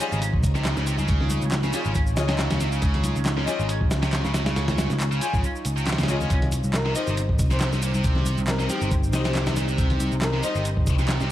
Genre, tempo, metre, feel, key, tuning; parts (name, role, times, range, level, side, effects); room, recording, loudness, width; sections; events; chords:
breakbeat, breaks; 138 BPM; 4/4; swing 55% on 16ths; A4 = 441 Hz
deep dark ambient pad; sustained chords; 0.0-11.3 s; G3 to Db5; -33 LUFS; equal; chorus, built-in reverb, sidechain pumping
heavy high-gain guitar; riff; 0.0-11.3 s; Bb2 to G3; -31 LUFS; right 1 dB; distortion, vintage 12-bit sampler grit, tape echo
warm studio string section; stabs; 0.0-10.6 s; Eb4 to Ab5; -31 LUFS; left 4 dB; tape echo
dusty soul sampler-style drum kit; drums; 0.0-11.3 s; hi-hat, kick drum, snare drum; -25 LUFS; equal
electronic shaker and handclaps; drums; 0.0-11.3 s; -35 LUFS; equal; overdrive
picked electric bass; bass; 0.1-11.3 s; G1 to Db2; -25 LUFS; equal; tube saturation
congas; percussion; 1.0-10.1 s; -32 LUFS; left 1 dB
breathy flute-like synth lead; melody; 6.7-10.4 s; Bb4 to C5; -34 LUFS; equal; chorus, tremolo, AM radio sound, tape echo
light reverb, digital ambience; vinyl crackle; -21 LUFS; side -13 dB against mid
0.0-11.3 A section
0.0 Dbadd9; 6.3 Cm